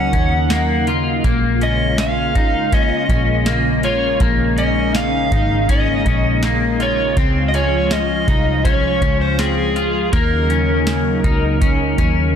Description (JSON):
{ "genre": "dream pop", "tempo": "81 BPM", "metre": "4/4", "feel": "straight", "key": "Bb minor", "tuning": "A4 = 440 Hz", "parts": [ { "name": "overdriven slide guitar", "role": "melody", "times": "0.0-12.3 s", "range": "Ab4 to Gb5", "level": "-21 LUFS", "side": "right 1 dB", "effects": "digital delay" }, { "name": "lush unison pad", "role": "sustained chords", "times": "0.0-12.4 s", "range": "Db3 to F4", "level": "-22 LUFS", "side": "equal", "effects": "chorus" }, { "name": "electric guitar at the edge of break-up", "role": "arpeggios", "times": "0.0-12.4 s", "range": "Bb3 to F4", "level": "-21 LUFS", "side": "left 4 dB", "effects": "lush chorus, digital delay" }, { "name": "vintage muted picked electric bass", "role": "bass", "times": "0.0-12.4 s", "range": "Ab1 to Eb2", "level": "-20 LUFS", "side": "equal", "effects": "none" }, { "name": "booming analog drum machine", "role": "drums", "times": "0.1-12.2 s", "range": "hi-hat, kick drum, snare drum, tambourine", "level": "-19 LUFS", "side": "equal", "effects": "none" } ], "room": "light reverb", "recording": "dense, heavily limited modern master", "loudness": "-14 LUFS", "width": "side -8 dB against mid", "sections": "0.0-12.4 A section", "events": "none", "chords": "0.0 Ebm7; 1.2 Bbm7; 7.2 Dbmaj7; 10.1 Ebm7" }